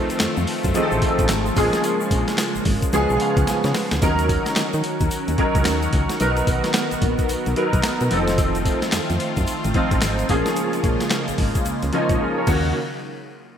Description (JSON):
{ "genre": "R&B, new jack swing", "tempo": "110 BPM", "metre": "4/4", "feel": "swing 62% on 16ths", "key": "Eb minor", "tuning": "A4 = 440 Hz", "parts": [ { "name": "clear concert grand piano", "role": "accompaniment", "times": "0.0-12.8 s", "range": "Eb3 to Ab5", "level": "-22 LUFS", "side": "equal", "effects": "ensemble chorus" }, { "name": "phased analog pad", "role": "sustained chords", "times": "0.0-12.7 s", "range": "Db3 to Bb4", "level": "-26 LUFS", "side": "equal", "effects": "phaser, chorus" }, { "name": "boom bap sampler-style drum kit", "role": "drums", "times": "0.1-12.6 s", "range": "crash cymbal, handclaps, hi-hat, kick drum, snare drum, tambourine", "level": "-23 LUFS", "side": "equal", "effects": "gated reverb" }, { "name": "egg shaker", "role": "percussion", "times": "0.1-12.7 s", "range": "none", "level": "-39 LUFS", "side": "left 6 dB", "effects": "none" }, { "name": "solid FM bass", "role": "bass", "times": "0.2-12.7 s", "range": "F1 to Eb3", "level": "-24 LUFS", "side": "equal", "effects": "none" } ], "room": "moderate lush hall reverb, RT60 1.9 s, digital ambience", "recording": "bright 1980s-style digital production", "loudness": "-18 LUFS", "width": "side -8 dB against mid", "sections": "0.0-4.0 A section; 4.0-12.7 B section", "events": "grand piano fill 2.9-4.0; drum fill 3.5-4.0; silent gap 12.2-12.7", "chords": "0.0 F7; 1.6 Bbm7; 2.9 Db7; 4.0 Ebm7; 6.2 Bmaj7; 8.1 F7; 10.3 Bbm7; 12.5 Ebm7; 12.7 N.C.", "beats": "0.20 0.75 1.29 | 1.84 2.38 2.93 3.47 | 4.02 4.56 5.11 5.66 | 6.20 6.75 7.29 7.84 | 8.38 8.93 9.47 10.02 | 10.56 11.11 11.65 12.20 | 12.75" }